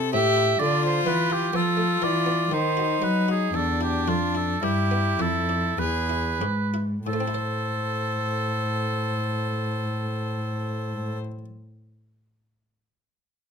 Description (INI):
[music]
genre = classical, baroque-style sonata movement with continuo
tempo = 46-65 BPM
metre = 3/4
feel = rubato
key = A minor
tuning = A4 = 440 Hz
[part]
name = clear violin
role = melody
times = 0.0-11.2 s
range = D4 to C5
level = -28 LUFS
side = left 10 dB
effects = none
[part]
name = buff-stop harpsichord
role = accompaniment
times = 0.0-11.4 s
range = E2 to C5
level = -32 LUFS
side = equal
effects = none
[part]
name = warm cello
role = bass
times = 0.0-11.2 s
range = E2 to F#3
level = -27 LUFS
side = right 1 dB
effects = none
[part]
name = clear oboe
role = second line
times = 0.1-11.2 s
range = F4 to E5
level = -27 LUFS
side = right 7 dB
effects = none
[sound]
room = little or no reverb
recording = close, detailed microphones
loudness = -22 LUFS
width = side -6 dB against mid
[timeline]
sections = 0.0-7.1 A section; 7.1-10.9 B section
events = slowing down 0.0-7.1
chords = 0.0 Am; 0.6 Bm7b5/D; 2.5 D#m6; 3.5 E5; 5.8 E7; 7.1 Am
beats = | 0.60 1.54 2.52 | 3.54 4.63 5.79 | 7.07 8.35 9.62